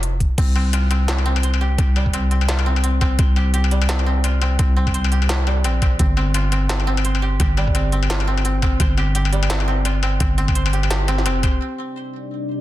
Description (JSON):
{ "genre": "half-time drum and bass", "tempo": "171 BPM", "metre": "4/4", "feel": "swing 58% on 16ths, half-time", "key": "unclear", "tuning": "A4 = 440 Hz", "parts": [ { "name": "growling 808-style bass", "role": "bass", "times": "0.0-11.6 s", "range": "F1 to C2", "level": "-18 LUFS", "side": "equal", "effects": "tube saturation" }, { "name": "industrial drum kit", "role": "drums", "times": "0.0-11.5 s", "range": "crash cymbal, hi-hat, snare drum, struck metal", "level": "-25 LUFS", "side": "left 2 dB", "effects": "none" }, { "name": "electronic kick drum", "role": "drums", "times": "0.2-11.5 s", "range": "none", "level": "-19 LUFS", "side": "equal", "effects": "none" }, { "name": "koto", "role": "arpeggios", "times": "0.4-12.6 s", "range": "G3 to C5", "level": "-25 LUFS", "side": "right 1 dB", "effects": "digital delay" }, { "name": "deep dark ambient pad", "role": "sustained chords", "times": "11.9-12.6 s", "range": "C4 to Eb5", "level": "-28 LUFS", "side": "left 3 dB", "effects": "chorus, built-in reverb, sidechain pumping" } ], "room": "little or no reverb", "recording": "dense, heavily limited modern master", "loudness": "-16 LUFS", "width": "side -15 dB against mid", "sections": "0.0-11.6 A section; 11.6-12.6 B section", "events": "none", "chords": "0.4 C5; 6.0 Gsus4; 11.6 Cmadd9" }